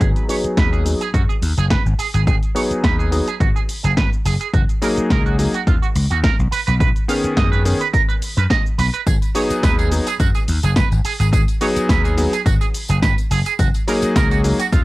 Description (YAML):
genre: nu-disco, nu disco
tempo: 106 BPM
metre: 4/4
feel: swing 54% on 16ths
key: G# minor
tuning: A4 = 440 Hz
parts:
  - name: bright electric grand piano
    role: accompaniment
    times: 0.0-14.6 s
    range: D#3 to G#4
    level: -21 LUFS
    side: left 1 dB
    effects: sidechain pumping, low-pass filter, cassette tape
  - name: electric guitar with an envelope filter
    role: riff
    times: 0.0-14.8 s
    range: E#4 to E#5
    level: -24 LUFS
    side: right 8 dB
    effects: lush chorus, vintage 12-bit sampler grit, cassette tape, tape echo
  - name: vintage slap bass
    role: bass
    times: 0.0-14.8 s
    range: F#1 to F#2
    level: -19 LUFS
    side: equal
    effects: none
  - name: electronic kick drum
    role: drums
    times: 0.0-14.8 s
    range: none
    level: -18 LUFS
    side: equal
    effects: small room ambience, cassette tape
  - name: house drum kit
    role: drums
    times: 0.0-14.8 s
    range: hi-hat, shaker, snare drum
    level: -25 LUFS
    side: equal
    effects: small room ambience, cassette tape
  - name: tambourine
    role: percussion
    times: 9.1-14.8 s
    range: none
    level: -35 LUFS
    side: left 10 dB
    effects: none
room: light reverb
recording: home recording on cassette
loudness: -15 LUFS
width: side -19 dB against mid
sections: 0.0-14.8 A section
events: filter sweep on electric grand piano 0.0-14.8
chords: 0.0 G#m7; 4.5 F#69; 6.5 B69; 9.1 G#m7; 13.6 F#69